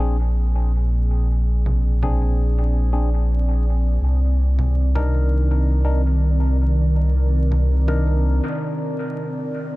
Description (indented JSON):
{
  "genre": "ambient dub",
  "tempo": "82 BPM",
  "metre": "4/4",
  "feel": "swing 56% on 16ths",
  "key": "C minor",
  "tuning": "A4 = 440 Hz",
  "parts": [
    { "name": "warbly tape-like pad", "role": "sustained chords", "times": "0.0-9.8 s", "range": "Bb2 to D5", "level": "-27 LUFS", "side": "right 1 dB", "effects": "chorus, built-in reverb" },
    { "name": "barky tine electric piano", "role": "stabs", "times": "0.0-8.4 s", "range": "C4 to Bb4", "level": "-30 LUFS", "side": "left 2 dB", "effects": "overdrive, phaser, dub echo" },
    { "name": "warm sub bass", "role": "bass", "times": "0.0-8.4 s", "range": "Bb1 to C2", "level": "-17 LUFS", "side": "equal", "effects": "none" },
    { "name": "congas", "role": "drums", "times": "1.7-8.0 s", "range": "none", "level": "-30 LUFS", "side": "right 1 dB", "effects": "low-pass filter on perc, studio reverb, low-pass filter on snare, dub echo" }
  ],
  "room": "digital ambience",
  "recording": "vinyl crackle",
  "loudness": "-17 LUFS",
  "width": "side -19 dB against mid",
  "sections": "0.0-9.8 A section",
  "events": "filter sweep on ambient pad 0.0-9.8; break 8.4-9.8",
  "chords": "0.0 Bb7; 4.0 Cm7",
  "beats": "0.36 | 1.09 1.82 2.55 3.28 | 4.02 4.75 5.48 6.21 | 6.94 7.67 8.41 9.14"
}